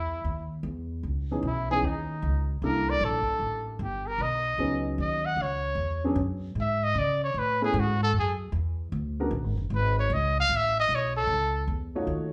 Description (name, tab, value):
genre	jazz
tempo	152 BPM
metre	4/4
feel	swing 66% on 8ths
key	C# minor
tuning	A4 = 440 Hz
part	clear trumpet	melody	0.0-11.7 s	D#4 to F#5	-30 LUFS	equal	none
part	upright bass	bass	0.0-12.3 s	F#1 to C#3	-32 LUFS	equal	none
part	warm upright piano	accompaniment	1.3-9.3, 12.0-12.3 s	E3 to C#5	-33 LUFS	equal	none
room	wet large studio reverb, RT60 0.8 s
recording	band playing live in one room, nothing above 10.7 kHz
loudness	-28 LUFS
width	mono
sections	0.0-1.0 A section; 1.0-12.3 B section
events	trumpet solo 1.0-12.3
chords	0.0 N.C.; 1.0 C#m9; 2.6 C13; 4.2 B69; 5.8 E69; 7.3 Amaj7(no3); 8.9 G#m7b5; 9.7 C#5; 10.5 F#m7 (rootless)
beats	0.25 0.65 | 1.04 1.44 1.83 2.22 | 2.62 3.01 3.40 3.80 | 4.19 4.59 4.98 5.38 | 5.77 6.16 6.56 6.95 | 7.35 7.74 8.14 8.53 | 8.93 9.32 9.71 10.11 | 10.50 10.90 11.29 11.69 | 12.08